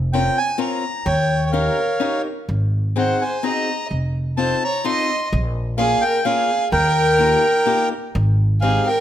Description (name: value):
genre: musette waltz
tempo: 128 BPM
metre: 3/4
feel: swing 53% on 8ths, rubato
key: Ab major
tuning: A4 = 439 Hz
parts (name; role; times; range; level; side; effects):
- upright bass; bass; 0.0-8.8 s; F1 to Eb2; -20 LUFS; equal; none
- accordion; melody; 0.1-9.0 s; Bb4 to C6; -20 LUFS; right 1 dB; none
- picked swing-style acoustic guitar; accompaniment; 0.1-8.9 s; Ab3 to Bb4; -24 LUFS; left 6 dB; none
- dark violin; second line; 1.5-9.0 s; Ab4 to Eb5; -24 LUFS; right 1 dB; none
room: light reverb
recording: none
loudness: -17 LUFS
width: side -11 dB against mid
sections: 0.0-9.0 A section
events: none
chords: 0.0 Bbmadd9/F; 1.1 Eb7; 2.5 Ab7; 3.9 F7; 5.3 Bbm7; 6.7 Ebadd9; 8.1 Abmaj7